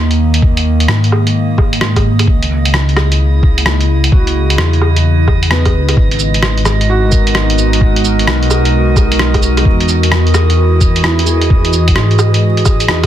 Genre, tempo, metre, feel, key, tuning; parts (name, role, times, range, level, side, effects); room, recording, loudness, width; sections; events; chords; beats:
future garage; 130 BPM; 4/4; swing 65% on 16ths; G# minor; A4 = 441 Hz
felt-muted upright piano; accompaniment; 0.0-13.1 s; B3 to A#4; -24 LUFS; right 3 dB; sidechain pumping, low-pass filter, dub echo
warbly tape-like pad; sustained chords; 0.0-13.1 s; C#3 to D#5; -17 LUFS; right 1 dB; chorus, built-in reverb, vintage 12-bit sampler grit, sidechain pumping
dark detuned saw bass; bass; 0.0-13.1 s; G#1 to G#2; -13 LUFS; equal
drifting glass-harmonics texture; texture; 0.1-13.1 s; D#5; -24 LUFS; right 3 dB; chorus, built-in reverb
lo-fi sampler-style drum kit; drums; 0.1-13.1 s; cabasa, hi-hat, rim click, woodblock; -16 LUFS; right 1 dB; soft clipping on snare
electronic kick drum; drums; 0.4-13.1 s; -12 LUFS; equal
little or no reverb; dense, heavily limited modern master; -9 LUFS; side -11 dB against mid
0.0-13.1 A section
filter sweep on felt piano 0.0-13.1
0.0 D#sus4; 2.3 C#madd9; 6.0 G#m7; 9.7 Emaj7
| 0.43 0.89 1.35 1.81 | 2.27 2.73 3.20 3.66 | 4.12 4.58 5.04 5.50 | 5.97 6.43 6.89 7.35 | 7.81 8.27 8.73 9.20 | 9.66 10.12 10.58 11.04 | 11.50 11.97 12.43 12.89